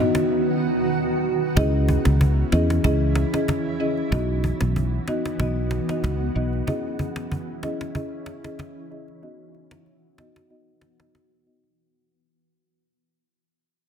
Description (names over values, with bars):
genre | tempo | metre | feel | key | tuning
afrobeats | 94 BPM | 4/4 | swing 55% on 16ths | unclear | A4 = 440 Hz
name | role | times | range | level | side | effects
marimba with soft mallets | accompaniment | 0.0-11.7 s | B3 to D#5 | -26 LUFS | left 2 dB | low-pass filter
granular cloud pad | sustained chords | 0.0-11.8 s | D#3 to F#4 | -27 LUFS | right 2 dB | built-in reverb, low-pass filter
cajon | drums | 0.1-11.7 s | none | -27 LUFS | equal | none
fingered electric bass | bass | 1.6-6.6 s | B1 to E2 | -21 LUFS | equal | none
room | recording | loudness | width
light reverb, small room ambience | dense, heavily limited modern master | -20 LUFS | side -7 dB against mid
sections
0.0-1.6 A section; 1.6-11.8 B section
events
break 0.3-1.6, 10.5-11.8; fade-out 1.6-11.8; filter sweep 1.6-11.8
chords
0.0 B; 1.6 C#madd9; 4.1 B; 6.7 C#madd9; 9.2 B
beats
0.29 0.93 | 1.57 2.21 2.84 3.48 | 4.12 4.76 5.40 6.04 | 6.67 7.31 7.95 8.59 | 9.23 9.87 10.50 11.14